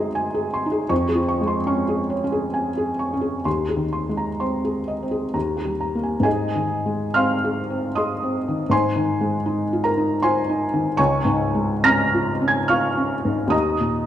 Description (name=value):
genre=classical, romantic nocturne for solo piano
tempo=62-83 BPM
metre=3/4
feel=rubato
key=Ab major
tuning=A4 = 440 Hz
part: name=felt-muted upright piano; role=solo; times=0.0-14.1 s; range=Db2 to Bb6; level=-19 LUFS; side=equal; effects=none
room=wet recital hall reverb, RT60 1.5 s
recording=none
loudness=-19 LUFS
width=side -11 dB against mid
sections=0.0-6.3 A section; 6.3-14.1 B section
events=none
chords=0.0 Ab7/Gb; 0.9 Db/F; 3.4 Ab/Eb; 5.3 Eb; 6.3 Ab; 8.7 Fm7/Ab; 11.0 Db; 13.5 Eb5